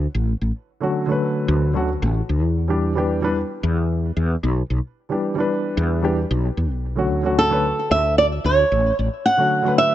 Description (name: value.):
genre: sunset chillout.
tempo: 112 BPM.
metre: 4/4.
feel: straight.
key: D major.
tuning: A4 = 440 Hz.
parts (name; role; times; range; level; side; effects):
woody fretless electric bass; bass; 0.0-9.1 s; A1 to E2; -20 LUFS; equal; analog chorus.
dark grand piano; accompaniment; 0.8-9.9 s; D3 to B4; -22 LUFS; equal; auto-pan, ping-pong delay.
flamenco guitar; melody; 7.4-9.9 s; A4 to F#5; -17 LUFS; right 2 dB; ping-pong delay.
room: light reverb.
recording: nothing above 8.0 kHz.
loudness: -18 LUFS.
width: side -12 dB against mid.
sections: 0.0-9.9 A section.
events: none.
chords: 0.0 Dmaj7; 2.6 Em7; 7.1 Dmaj7.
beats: 0.14 | 0.68 1.21 1.75 2.28 | 2.82 3.35 3.89 4.43 | 4.96 5.50 6.03 6.57 | 7.11 7.64 8.18 8.71 | 9.25 9.78.